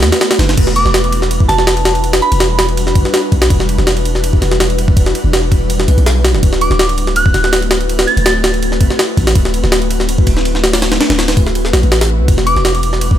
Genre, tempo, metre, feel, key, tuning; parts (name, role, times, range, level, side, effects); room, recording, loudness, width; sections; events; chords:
drum and bass, jungle; 164 BPM; 4/4; straight; E minor; A4 = 440 Hz
ethereal airy pad; sustained chords; 0.0-13.2 s; G3 to B4; -19 LUFS; left 1 dB; ensemble chorus, built-in reverb
long sustained 808-style bass; bass; 0.0-13.2 s; D1 to E2; -15 LUFS; equal
jungle sampler-style drum kit; drums; 0.0-13.2 s; crash cymbal, kick drum, ride cymbal, snare drum; -13 LUFS; equal; studio reverb
soft synth bell; melody; 0.8-2.6, 6.6-8.4, 12.5-12.7 s; A5 to A6; -17 LUFS; right 2 dB; chorus, dub echo
little or no reverb; -10 LUFS; side -11 dB against mid
0.6-13.2 A section
drop 0.6-13.2; kick drops out 11.6-12.3
0.0 B7sus4; 0.6 Em9; 6.4 D13; 12.3 Em9